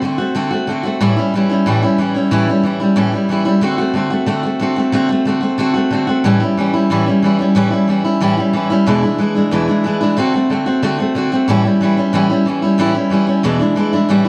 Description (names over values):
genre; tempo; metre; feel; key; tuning
rock; 183 BPM; 4/4; straight; A mixolydian; A4 = 442 Hz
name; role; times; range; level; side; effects
picked steel-string acoustic guitar; solo; 0.0-14.3 s; E2 to F#4; -15 LUFS; equal; none
room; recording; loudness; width
moderate echo chamber reverb, RT60 2.2 s; none; -15 LUFS; mono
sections
0.0-14.1 A section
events
none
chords
0.0 D7; 1.0 A7; 3.6 D7; 6.2 A7; 8.9 E7; 10.2 D7; 11.5 A7; 13.4 E7